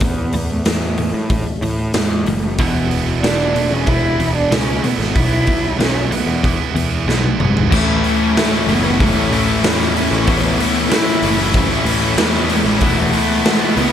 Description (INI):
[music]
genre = quiet-loud alternative rock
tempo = 94 BPM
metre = 4/4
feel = straight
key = A major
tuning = A4 = 440 Hz
[part]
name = dark cello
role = melody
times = 0.0-13.9 s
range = G#3 to E4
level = -21 LUFS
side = equal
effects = none
[part]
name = clean electric guitar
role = arpeggios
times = 0.0-7.7 s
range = E2 to E3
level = -24 LUFS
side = left 1 dB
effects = analog chorus, tape echo
[part]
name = fuzz picked electric bass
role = bass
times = 0.0-13.9 s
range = E1 to A2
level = -21 LUFS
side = equal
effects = overdrive
[part]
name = raw garage drum kit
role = drums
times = 0.0-13.9 s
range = crash cymbal, hi-hat, kick drum, snare drum, toms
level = -19 LUFS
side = equal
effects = none
[part]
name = high-gain distorted guitar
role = riff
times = 2.6-13.9 s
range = A2 to E4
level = -22 LUFS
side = right 11 dB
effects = distortion
[part]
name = high-gain distorted guitar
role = riff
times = 7.7-13.9 s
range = A2 to E4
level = -22 LUFS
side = left 1 dB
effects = distortion
[part]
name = thick fuzz guitar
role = riff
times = 7.7-13.9 s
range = A2 to E4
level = -20 LUFS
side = left 12 dB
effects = distortion
[sound]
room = light reverb, small room ambience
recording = none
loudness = -14 LUFS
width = side -9 dB against mid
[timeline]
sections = 0.0-7.7 A section; 7.7-13.9 B section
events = drum fill 7.1-7.7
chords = 0.0 A5; 2.6 E; 7.7 A; 12.8 E6